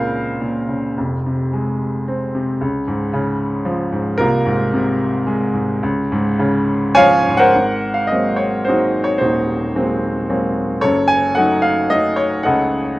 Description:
classical, lyrical solo piano; 101-116 BPM; 3/4; rubato; A4 = 441 Hz
clear baby grand piano; solo; 0.0-13.0 s; Eb1 to Ab5; -15 LUFS; equal
light reverb; dark, warm production; -15 LUFS; side -18 dB against mid
0.0-7.5 A section; 7.5-13.0 B section
0.0 Bbmadd9/Db; 1.0 Fm; 2.6 Db; 4.2 Fm/C; 5.8 Db; 7.5 Ab9; 10.8 Gbm6

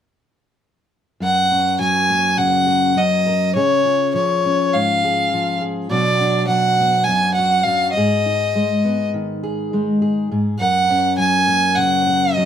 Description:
folk; 102 BPM; 4/4; straight; F# major; A4 = 442 Hz
warm fiddle; melody; 1.2-12.5 s; C#5 to G#5; -16 LUFS; equal
fingerpicked steel-string acoustic guitar; accompaniment; 1.2-12.5 s; F#2 to A#4; -20 LUFS; left 1 dB
moderate studio reverb, RT60 0.8 s; band playing live in one room; -15 LUFS; side -9 dB against mid
1.2-12.5 A section
1.2 F#; 3.5 C#; 5.9 Bm; 8.0 G#m; 10.6 F#

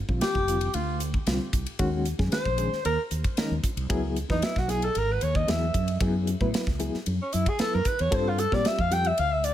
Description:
electric jazz fusion; 114 BPM; 4/4; straight; A4 = 439 Hz
reed electric piano; accompaniment; 0.1-9.2 s; D3 to B#4; -31 LUFS; left 2 dB; fast tremolo, plate reverb
mellow fretless electric bass; bass; 0.1-9.5 s; F1 to Bb2; -28 LUFS; equal; ensemble chorus
modern studio drum kit; drums; 0.1-9.5 s; hi-hat, kick drum, ride cymbal, snare drum; -30 LUFS; equal
breathy alto saxophone; melody; 0.2-9.5 s; C#4 to G5; -28 LUFS; equal; plate reverb, tape echo
light reverb; -24 LUFS; side -12 dB against mid
0.0-9.5 A section
alto saxophone solo 0.0-9.5
0.0 G7(no3); 1.8 D#m7; 3.9 C#m7; 6.0 F#7sus2; 8.1 G7sus2

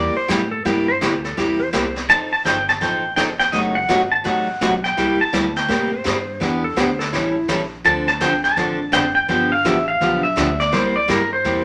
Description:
country, western swing; 167 BPM; 4/4; swing 63% on 8ths; C mixolydian; A4 = 440 Hz
pedal steel guitar; melody; 0.0-11.6 s; Bb4 to A5; -20 LUFS; equal
picked steel-string acoustic guitar; accompaniment; 0.0-11.6 s; C3 to A4; -23 LUFS; equal
upright bass; bass; 0.0-11.6 s; F1 to A2; -33 LUFS; equal
clean lap steel guitar; second line; 0.2-1.9, 5.9-7.5 s; E4 to C5; -26 LUFS; equal
jazz brush drum kit; drums; 0.3-11.6 s; brushed snare drum, hi-hat, kick drum, snare drum; -28 LUFS; equal
wet studio reverb, RT60 0.5 s; -19 LUFS; mono
0.0-11.6 A section
0.0 C9; 2.1 F9; 3.5 F#dim7; 5.0 C9; 6.4 Em7; 7.1 A7b9; 7.9 Dm7; 9.3 G9; 10.7 C7

